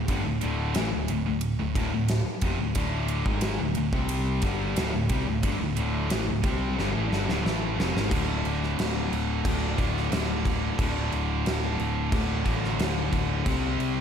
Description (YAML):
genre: hard rock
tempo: 90 BPM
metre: 4/4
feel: straight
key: unclear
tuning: A4 = 438 Hz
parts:
  - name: distorted electric guitar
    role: riff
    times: 0.0-14.0 s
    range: D2 to C4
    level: -30 LUFS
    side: left 8 dB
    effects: distortion
  - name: scooped high-gain guitar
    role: riff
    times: 0.0-14.0 s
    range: D2 to C4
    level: -31 LUFS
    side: right 8 dB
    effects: distortion, slapback echo
  - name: picked electric bass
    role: bass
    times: 0.0-14.0 s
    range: D1 to C2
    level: -30 LUFS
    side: equal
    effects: none
  - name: gated 80s drum kit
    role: drums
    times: 0.1-14.0 s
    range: crash cymbal, kick drum, ride cymbal, snare drum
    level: -30 LUFS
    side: equal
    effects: none
room: moderate concert hall reverb, RT60 2.0 s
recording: big arena sound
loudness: -24 LUFS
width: side -8 dB against mid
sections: 0.0-8.1 A section; 8.1-14.0 B section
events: drum fill 6.8-8.1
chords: 0.0 D5; 13.5 C5